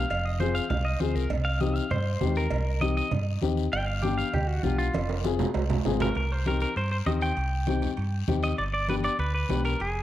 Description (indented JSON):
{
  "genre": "latin, cumbia",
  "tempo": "198 BPM",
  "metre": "4/4",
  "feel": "straight",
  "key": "C minor",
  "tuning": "A4 = 440 Hz",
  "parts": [
    { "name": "clean electric guitar", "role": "melody", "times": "0.0-10.0 s", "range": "F4 to G5", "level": "-31 LUFS", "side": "equal", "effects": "spring reverb, slapback echo" },
    { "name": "fingered electric bass", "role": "bass", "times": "0.0-10.0 s", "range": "F1 to G2", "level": "-28 LUFS", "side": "right 1 dB", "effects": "none" },
    { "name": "congas", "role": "percussion", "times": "0.1-9.9 s", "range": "none", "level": "-33 LUFS", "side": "right 3 dB", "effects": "none" },
    { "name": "cowbell and timbales", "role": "percussion", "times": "0.1-10.0 s", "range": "none", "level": "-36 LUFS", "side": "right 7 dB", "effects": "none" },
    { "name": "guiro", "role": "percussion", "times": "0.1-10.0 s", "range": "none", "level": "-45 LUFS", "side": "left 17 dB", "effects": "none" },
    { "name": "dark upright piano", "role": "accompaniment", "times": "0.4-9.7 s", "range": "B3 to Ab4", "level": "-30 LUFS", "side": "left 8 dB", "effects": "none" }
  ],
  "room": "little or no reverb",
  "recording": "dry, close 1970s-style studio recording",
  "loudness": "-24 LUFS",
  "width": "side -13 dB against mid",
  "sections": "0.0-6.2 A section; 6.2-10.0 B section",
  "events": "clean electric guitar solo 0.0-6.2; drum fill 4.9-6.2",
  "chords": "0.1 Fm; 1.3 Cm; 3.7 G; 4.9 Fm; 6.2 Cm; 8.6 G",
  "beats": "| 0.10 0.40 0.70 1.01 | 1.31 1.61 1.91 2.22 | 2.52 2.82 3.12 3.43 | 3.73 4.03 4.33 4.64 | 4.94 5.24 5.55 5.85 | 6.15 6.46 6.76 7.06 | 7.37 7.67 7.97 8.28 | 8.58 8.88 9.19 9.49 | 9.79"
}